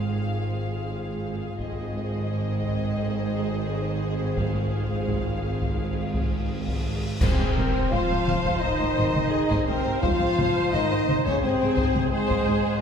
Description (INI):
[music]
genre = cinematic, epic orchestral film score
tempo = 86 BPM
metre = 4/4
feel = straight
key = Ab major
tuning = A4 = 440 Hz
[part]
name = warm symphonic violin section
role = melody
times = 0.0-12.7 s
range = C5 to F5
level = -36 LUFS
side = left 4 dB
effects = none
[part]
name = warm symphonic violin section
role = second line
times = 0.0-12.8 s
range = Ab4 to F5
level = -35 LUFS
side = left 2 dB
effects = none
[part]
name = rich symphonic viola section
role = accompaniment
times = 0.0-12.8 s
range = Ab4 to C5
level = -32 LUFS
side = right 1 dB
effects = none
[part]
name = clear French horn section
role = sustained chords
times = 0.0-12.8 s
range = Ab3 to F4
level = -29 LUFS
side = left 2 dB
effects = none
[part]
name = rich symphonic cello section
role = bass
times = 0.0-12.7 s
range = Ab2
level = -31 LUFS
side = equal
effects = none
[part]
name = rich symphonic double bass section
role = bass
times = 0.0-12.5 s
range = Ab1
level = -31 LUFS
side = right 3 dB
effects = none
[part]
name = taiko ensemble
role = drums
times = 1.6-12.8 s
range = none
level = -29 LUFS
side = equal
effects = none
[part]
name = cymbal swell, clash cymbals and concert bass drum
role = percussion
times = 4.4-8.6 s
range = none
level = -32 LUFS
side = equal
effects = none
[part]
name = cymbal swell and sub drop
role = sound effects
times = 6.1-10.0 s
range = none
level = -37 LUFS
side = left 1 dB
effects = none
[part]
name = hollow flute section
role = second line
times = 7.2-12.8 s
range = Ab4 to F5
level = -34 LUFS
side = left 1 dB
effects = none
[part]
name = clear trombone section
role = sustained chords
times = 7.2-12.8 s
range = Ab2 to F3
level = -33 LUFS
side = equal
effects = none
[sound]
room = wet scoring stage reverb, RT60 1.9 s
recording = heard from further back in the room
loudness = -22 LUFS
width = side -7 dB against mid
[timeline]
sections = 0.0-7.2 A section; 7.2-12.8 B section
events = cymbal swell 6.1-7.2; band accent 7.2-7.9; impact 7.2-10.0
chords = 0.0 Fm/Ab; 1.6 Ab; 4.4 Fm/Ab; 7.2 Ab